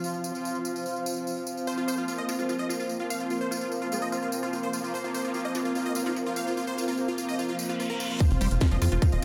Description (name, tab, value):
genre	psychedelic trance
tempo	147 BPM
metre	4/4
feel	straight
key	unclear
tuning	A4 = 438 Hz
part	bubbling stepped-filter texture	sustained chords	0.0-9.2 s	F3 to F4	-36 LUFS	equal	chorus, built-in reverb, sidechain pumping
part	tambourine	percussion	0.0-9.2 s	none	-41 LUFS	equal	none
part	warbly tape-like pad	texture	0.0-9.2 s	C4 to F5	-34 LUFS	equal	chorus, built-in reverb, sidechain pumping
part	supersaw stab	melody	1.7-9.2 s	F4 to F5	-36 LUFS	equal	phaser, sidechain pumping, digital delay
part	resonant blip pluck	second line	2.3-9.1 s	Ab3 to Eb4	-45 LUFS	equal	none
part	reverse cymbal and impact	sound effects	7.6-9.2 s	none	-38 LUFS	equal	none
part	liquid acid bass	riff	8.2-9.1 s	Eb3 to F4	-38 LUFS	equal	none
part	drum and bass drum kit	drums	8.2-9.2 s	hi-hat, snare drum	-38 LUFS	equal	overdrive, studio ambience
part	electronic kick drum	drums	8.2-9.1 s	none	-24 LUFS	equal	overdrive, studio ambience
part	tight sequencer bass	bass	8.3-9.2 s	Eb1 to F2	-27 LUFS	equal	none
room	moderate lush hall reverb, RT60 1.9 s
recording	none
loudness	-29 LUFS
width	mono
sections	0.0-8.2 A section; 8.2-9.2 B section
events	reverse cymbal 7.6-8.2; drop 8.2-9.2; impact 8.2-9.2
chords	0.0 F5